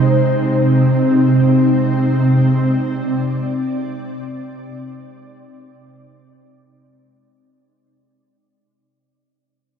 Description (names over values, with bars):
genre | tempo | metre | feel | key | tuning
ambient | free time | none | none | unclear | A4 = 440 Hz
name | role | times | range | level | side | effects
ethereal airy pad | sustained chords | 0.0-7.5 s | C3 to D5 | -14 LUFS | right 1 dB | ensemble chorus, built-in reverb
bowed-like drone | drone | 0.0-7.7 s | Ab3 | -31 LUFS | equal | none
room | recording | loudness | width
wet huge ambient reverb, RT60 8.1 s | dark, warm production | -13 LUFS | side -7 dB against mid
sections
0.0-7.5 A section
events
fade-out 0.0-7.5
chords
0.0 Cmadd9